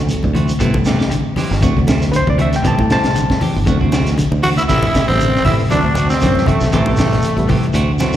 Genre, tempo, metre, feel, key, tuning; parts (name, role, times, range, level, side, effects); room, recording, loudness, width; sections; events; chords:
afrobeat; 118 BPM; 4/4; swing 55% on 16ths; A dorian; A4 = 440 Hz
overdriven reed electric piano; accompaniment; 0.0-8.2 s; B2 to A5; -21 LUFS; right 1 dB; slapback echo
fingered electric bass; bass; 0.0-8.2 s; G1 to A2; -17 LUFS; equal
crunchy breakbeat drum kit; drums; 0.1-8.2 s; crash cymbal, hi-hat, kick drum, snare drum; -20 LUFS; equal
congas; percussion; 0.1-8.1 s; -25 LUFS; right 1 dB
shekere; percussion; 0.1-8.2 s; -27 LUFS; right 1 dB
electric guitar at the edge of break-up; arpeggios; 0.3-7.8 s; C3 to E3; -22 LUFS; left 6 dB; slapback echo
clean electric guitar; stabs; 0.3-8.2 s; E3 to G4; -24 LUFS; right 6 dB; slapback echo
growling tenor saxophone; melody; 4.4-7.7 s; A3 to F#4; -18 LUFS; equal; slapback echo
warm trumpet; second line; 4.4-7.7 s; A3 to F#4; -26 LUFS; right 2 dB
light reverb; live gig heard through the venue's PA, recital hall reverb; -12 LUFS; side -11 dB against mid
0.0-4.7 A section; 4.7-8.2 B section
reed electric piano solo 0.0-4.7; drum fill 4.2-4.7
0.0 D7; 0.6 Am7; 1.6 D7; 2.6 Am7; 3.7 D7; 4.7 Am7; 5.7 D7; 6.7 Am7